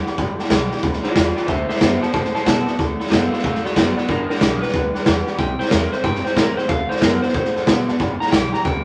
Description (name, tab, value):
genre	rockabilly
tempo	184 BPM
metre	4/4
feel	swing 65% on 8ths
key	G major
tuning	A4 = 439 Hz
part	electric guitar through a small old amp	melody	0.0-8.8 s	D4 to Bb5	-26 LUFS	equal	none
part	picked steel-string acoustic guitar	accompaniment	0.0-8.8 s	G2 to G4	-33 LUFS	equal	none
part	electric guitar through a small old amp	riff	0.0-8.8 s	G2 to B3	-28 LUFS	equal	warbly pitch drift
part	upright bass	bass	0.0-8.8 s	F#1 to B2	-30 LUFS	equal	none
part	honky-tonk upright piano	accompaniment	0.1-8.8 s	D5 to D6	-35 LUFS	equal	none
part	raw garage drum kit	drums	0.1-8.7 s	hi-hat, kick drum, snare drum	-22 LUFS	equal	none
room	moderate studio reverb, RT60 0.6 s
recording	none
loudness	-19 LUFS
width	mono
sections	0.0-8.8 A section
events	clean electric guitar solo 0.0-8.8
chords	0.0 G; 1.5 D7; 4.1 G; 5.4 C; 6.7 D7; 8.0 G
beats	| 0.18 0.51 0.83 1.16 | 1.48 1.81 2.13 2.46 | 2.78 3.11 3.43 3.76 | 4.08 4.41 4.74 5.06 | 5.39 5.71 6.04 6.37 | 6.69 7.02 7.34 7.67 | 8.00 8.32 8.65